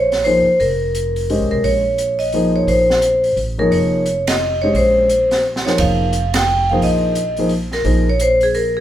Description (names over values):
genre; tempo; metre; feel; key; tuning
modal jazz; 174 BPM; 3/4; swing 62% on 8ths; Bb dorian; A4 = 440 Hz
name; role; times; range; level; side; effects
vibraphone with medium hard mallets; melody; 0.0-8.8 s; Ab4 to G5; -16 LUFS; equal; none
upright bass; bass; 0.0-8.8 s; F1 to Cb2; -22 LUFS; equal; none
open jazz drum kit; drums; 0.1-8.6 s; hi-hat, kick drum, ride cymbal, snare drum; -25 LUFS; right 2 dB; none
dark concert grand piano; accompaniment; 0.3-8.0 s; F3 to Eb5; -19 LUFS; left 1 dB; none
room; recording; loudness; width
moderate large studio reverb, RT60 0.9 s; band playing live in one room; -14 LUFS; side -11 dB against mid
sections
0.0-8.8 A section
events
band accent 4.2, 6.3; drum fill 5.4-5.8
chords
0.0 Bbm11